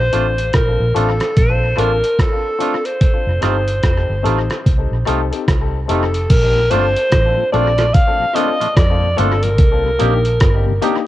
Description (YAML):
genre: lovers rock reggae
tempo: 73 BPM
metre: 4/4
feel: swing 61% on 16ths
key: unclear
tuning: A4 = 440 Hz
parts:
  - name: breathy alto saxophone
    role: melody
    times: 0.0-11.1 s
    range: A4 to F5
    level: -18 LUFS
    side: equal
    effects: tape echo
  - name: vintage muted fingered electric bass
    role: bass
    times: 0.0-10.8 s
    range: F1 to F2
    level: -18 LUFS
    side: equal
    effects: transformer saturation
  - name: warm grand piano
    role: accompaniment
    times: 0.1-11.0 s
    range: Bb3 to A4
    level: -23 LUFS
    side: left 8 dB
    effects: cassette tape, tape echo
  - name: twangy electric guitar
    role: stabs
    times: 0.1-11.0 s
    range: A3 to G4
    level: -24 LUFS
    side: right 10 dB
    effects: cassette tape
  - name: dusty soul sampler-style drum kit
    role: drums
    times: 0.1-11.1 s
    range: crash cymbal, hi-hat, kick drum, rim click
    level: -16 LUFS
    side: equal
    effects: tape echo
  - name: mellow tonewheel organ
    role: accompaniment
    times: 6.5-10.9 s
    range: Bb2 to Eb4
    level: -28 LUFS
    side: left 9 dB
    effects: overdrive, chorus vibrato, slow rotary speaker, cassette tape, tape echo
room: light reverb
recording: home recording on cassette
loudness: -13 LUFS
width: side -14 dB against mid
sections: 0.0-6.3 A section; 6.3-11.1 B section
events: none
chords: 0.0 Bbmaj7; 3.0 F7; 6.3 Bbmaj7; 9.6 Cm7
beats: 0.54 1.37 2.19 | 3.01 3.84 4.66 5.48 | 6.30 7.12 7.95 8.77 | 9.59 10.41